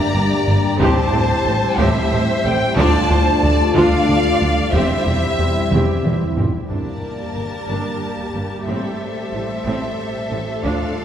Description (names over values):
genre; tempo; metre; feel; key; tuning
cinematic, hybrid orchestral and electronic film score; 61 BPM (dotted quarters); 6/8; straight; G dorian; A4 = 441 Hz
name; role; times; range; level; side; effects
warm symphonic violin section; melody; 0.0-5.7 s; C5 to Bb5; -22 LUFS; left 1 dB; none
rich symphonic violin section; second line; 0.0-11.0 s; A4 to A5; -24 LUFS; left 1 dB; none
warm symphonic viola section; accompaniment; 0.0-11.0 s; A3 to G4; -24 LUFS; equal; none
mellow French horn section; sustained chords; 0.0-6.4 s; G3 to G4; -26 LUFS; left 5 dB; none
phased analog pad; sustained chords; 0.0-11.0 s; F3 to A5; -25 LUFS; left 1 dB; phaser, chorus
round analog bass; riff; 0.1-6.6 s; D2 to A3; -22 LUFS; right 1 dB; none
warm symphonic cello section; bass; 0.1-10.7 s; D2 to A2; -25 LUFS; right 2 dB; none
clear symphonic double bass section; bass; 0.2-10.7 s; E1 to D2; -26 LUFS; right 2 dB; none
taiko ensemble; drums; 0.8-11.0 s; none; -25 LUFS; equal; none
riser; sound effects; 11.0 s; none; -44 LUFS; right 2 dB; none
room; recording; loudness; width
wet church reverb, RT60 2.9 s; recorded in a church or concert hall; -16 LUFS; side -9 dB against mid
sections
0.0-6.7 A section; 6.7-11.0 B section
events
drum fill 5.7-6.7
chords
0.0 Gm; 0.8 Am7; 2.8 Dm; 4.7 C/E; 6.7 Gmadd9; 8.7 Am7